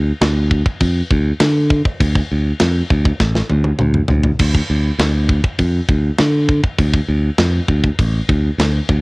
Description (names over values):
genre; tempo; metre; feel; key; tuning
heavy metal; 100 BPM; 4/4; straight; D minor; A4 = 441 Hz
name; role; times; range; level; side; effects
modern bright picked electric bass; bass; 0.0-9.0 s; A1 to D3; -15 LUFS; equal; none
tight metal drum kit; drums; 0.2-9.0 s; crash cymbal, kick drum, snare drum, toms; -18 LUFS; equal; cassette tape
room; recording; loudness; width
little or no reverb; home recording on cassette; -13 LUFS; side -28 dB against mid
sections
0.0-9.0 A section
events
drum fill 3.2-4.4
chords
none